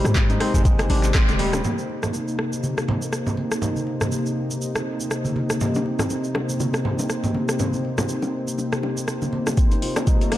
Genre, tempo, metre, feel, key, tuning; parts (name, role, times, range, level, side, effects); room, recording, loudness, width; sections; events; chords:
afro house; 121 BPM; 4/4; swing 57% on 16ths; C minor; A4 = 440 Hz
warm analog pad; sustained chords; 0.0-10.4 s; C3 to G4; -28 LUFS; equal; chorus, sidechain pumping
kora; arpeggios; 0.0-2.9, 9.6-10.4 s; G3 to F4; -31 LUFS; right 1 dB; sidechain pumping, low-pass filter, tape echo
mellow synth brass; stabs; 0.0-10.4 s; Ab3 to C5; -28 LUFS; left 2 dB; chorus, sidechain pumping, tape echo
warm 808-style bass; bass; 0.0-1.6 s; Eb1 to Ab2; -22 LUFS; equal; sidechain pumping
bongos; percussion; 0.0-1.6, 5.8-10.4 s; -31 LUFS; left 2 dB
afro-pop drum kit; drums; 0.1-10.4 s; cabasa, handclaps, hi-hat, rim click, toms; -28 LUFS; equal
congas; percussion; 0.1-9.6 s; -28 LUFS; right 2 dB
electronic kick drum; drums; 0.2-1.3, 9.6-10.2 s; -19 LUFS; equal
riser; sound effects; 10.0-10.4 s; -34 LUFS; left 1 dB
light reverb; dark, warm production, lossy compression artefacts; -20 LUFS; side -14 dB against mid
0.0-1.6 A section; 1.6-9.6 B section
filter sweep on kora 0.0-1.6; band accent 1.1; filter sweep on analog polysynth 1.6-9.6; drum fill 9.6-10.4; riser 10.0-10.4
0.0 Abmaj7; 1.6 Cm7